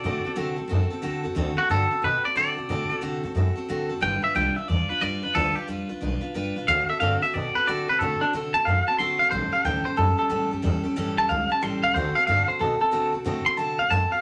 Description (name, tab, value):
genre	rockabilly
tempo	181 BPM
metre	4/4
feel	swing 64% on 8ths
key	D mixolydian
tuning	A4 = 440 Hz
part	twangy electric guitar	melody	0.0-14.2 s	D4 to C6	-25 LUFS	equal	none
part	picked steel-string acoustic guitar	accompaniment	0.0-14.2 s	A2 to B4	-32 LUFS	equal	none
part	upright bass	bass	0.0-14.2 s	G1 to D3	-31 LUFS	equal	none
room	moderate studio reverb, RT60 0.5 s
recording	none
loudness	-24 LUFS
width	mono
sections	0.0-14.2 A section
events	clean electric guitar solo 0.0-14.2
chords	0.0 D7; 4.0 G7; 6.7 D7; 9.3 A7; 12.0 D7